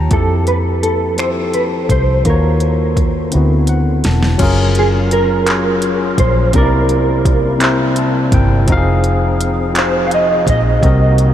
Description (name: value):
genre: slow six-eight R&B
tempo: 56 BPM (dotted quarters)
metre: 6/8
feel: straight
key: unclear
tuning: A4 = 440 Hz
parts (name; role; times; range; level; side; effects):
- barky tine electric piano; accompaniment; 0.0-11.3 s; C3 to Bb5; -17 LUFS; left 2 dB; none
- vintage muted fingered electric bass; bass; 0.0-11.3 s; E1 to F2; -16 LUFS; equal; none
- mellow electric guitar; melody; 0.1-11.3 s; Ab4 to F5; -18 LUFS; right 2 dB; ensemble chorus
- smooth R&B drum kit; drums; 0.1-11.3 s; crash cymbal, finger snaps, handclaps, hi-hat, kick drum, snare drum; -18 LUFS; equal; none
- tonewheel organ; sustained chords; 4.4-11.3 s; C3 to Bb4; -23 LUFS; right 1 dB; overdrive, chorus vibrato, slow rotary speaker
room: moderate huge ambient reverb, RT60 7.6 s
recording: dreamy mix soaked in reverb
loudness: -11 LUFS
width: side -10 dB against mid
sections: 0.0-4.4 A section; 4.4-11.3 B section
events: drum fill 3.3-4.4; tine electric piano fill 3.3-4.4, 7.6-8.7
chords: 0.1 Fmaj7; 2.3 Ebm9; 3.3 D13; 4.4 Gbmaj7; 6.5 C7; 8.7 Fm7; 10.8 Cm7b5